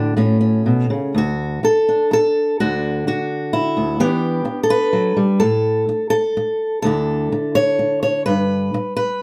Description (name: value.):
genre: folk, solo fingerstyle acoustic guitar.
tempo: 126 BPM.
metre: 3/4.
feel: rubato.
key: D major.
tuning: A4 = 440 Hz.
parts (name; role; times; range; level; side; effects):
fingerpicked steel-string acoustic guitar; solo; 0.0-9.2 s; D2 to C#5; -18 LUFS; equal; none.
room: light reverb.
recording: none.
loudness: -18 LUFS.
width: mono.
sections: 0.0-1.1 A section; 1.1-9.2 B section.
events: none.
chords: 0.2 Aadd9; 1.1 D; 2.6 N.C.; 4.0 Em7; 5.4 N.C.; 6.8 Dsus2; 8.3 G.